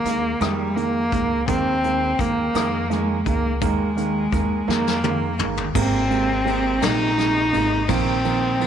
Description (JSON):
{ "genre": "six-eight pop ballad", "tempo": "56 BPM (dotted quarters)", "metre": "6/8", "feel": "straight", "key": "Ab major", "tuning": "A4 = 439 Hz", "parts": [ { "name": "warm cello", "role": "melody", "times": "0.0-8.7 s", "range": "G3 to Eb4", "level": "-22 LUFS", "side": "left 1 dB", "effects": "none" }, { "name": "dark baby grand piano", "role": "accompaniment", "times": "0.0-8.7 s", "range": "C3 to Bb3", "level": "-25 LUFS", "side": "right 10 dB", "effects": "none" }, { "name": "upright bass", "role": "bass", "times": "0.0-8.7 s", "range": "G1 to F2", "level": "-27 LUFS", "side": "equal", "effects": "none" }, { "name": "vintage brush drum kit", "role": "drums", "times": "0.1-8.7 s", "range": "crash cymbal, hi-hat, kick drum, ride cymbal, rim click, snare drum, toms", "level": "-27 LUFS", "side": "left 5 dB", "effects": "none" } ], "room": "light reverb, small room reverb", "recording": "1960s-style stereo, lossy compression artefacts", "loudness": "-19 LUFS", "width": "side -8 dB against mid", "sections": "0.0-5.8 A section; 5.8-8.7 B section", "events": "drum fill 4.7-5.8", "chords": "0.0 Ebsus4; 5.8 Abadd9; 7.9 Ebsus2/Bb" }